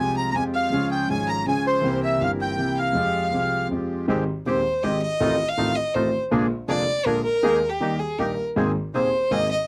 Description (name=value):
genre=tango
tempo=161 BPM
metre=3/4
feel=rubato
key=F minor, Ab major from 4.1 s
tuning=A4 = 441 Hz
part: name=bandoneon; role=melody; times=0.0-3.7 s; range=C5 to Bb5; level=-27 LUFS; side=equal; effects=none
part: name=rich violin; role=second line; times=0.0-9.7 s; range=G4 to Bb5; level=-27 LUFS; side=equal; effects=none
part: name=clear concert grand piano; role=accompaniment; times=0.0-9.5 s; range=Eb1 to Ab4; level=-27 LUFS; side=equal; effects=none
part: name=bandoneon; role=stabs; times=0.0-9.5 s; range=Ab3 to Bb4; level=-33 LUFS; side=equal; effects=none
room=light reverb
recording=dry, close 1970s-style studio recording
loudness=-23 LUFS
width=mono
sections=0.0-4.1 A section; 4.1-9.7 B section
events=violin solo 4.1-9.7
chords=0.0 Fmadd9; 0.7 Db; 1.8 C7; 3.0 Fmadd9; 4.1 Abmaj7; 5.2 F7/A; 6.3 Bb7; 7.4 Ebsus4; 7.8 Eb; 8.6 Abadd9